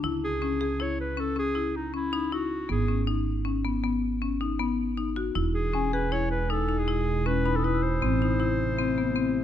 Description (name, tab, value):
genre	contemporary instrumental, chamber music in an uneven meter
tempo	158 BPM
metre	7/4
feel	straight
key	C# minor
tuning	A4 = 440 Hz
part	marimba with hard mallets	arpeggios	0.0-9.4 s	B3 to G#4	-28 LUFS	left 6 dB	none
part	upright bass	bass	0.0-9.4 s	E1 to C#2	-30 LUFS	right 3 dB	none
part	clear clarinet	melody	0.2-9.4 s	D#4 to C#5	-31 LUFS	left 1 dB	none
part	warbly tape-like pad	sustained chords	5.9-9.4 s	B2 to E4	-33 LUFS	equal	chorus, built-in reverb
part	glockenspiel with rubber mallets	texture	5.7-8.4 s	G#5 to E6	-36 LUFS	left 5 dB	none
room	little or no reverb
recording	close, detailed microphones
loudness	-25 LUFS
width	side -10 dB against mid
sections	0.0-9.4 A section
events	none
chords	0.0 C#m; 2.7 G#m; 5.4 E; 8.0 Am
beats	| 0.04 0.42 0.80 1.18 1.56 1.94 2.32 | 2.70 3.08 3.46 3.84 4.22 4.60 4.98 | 5.36 5.74 6.12 6.50 6.88 7.26 7.64 | 8.02 8.40 8.78 9.16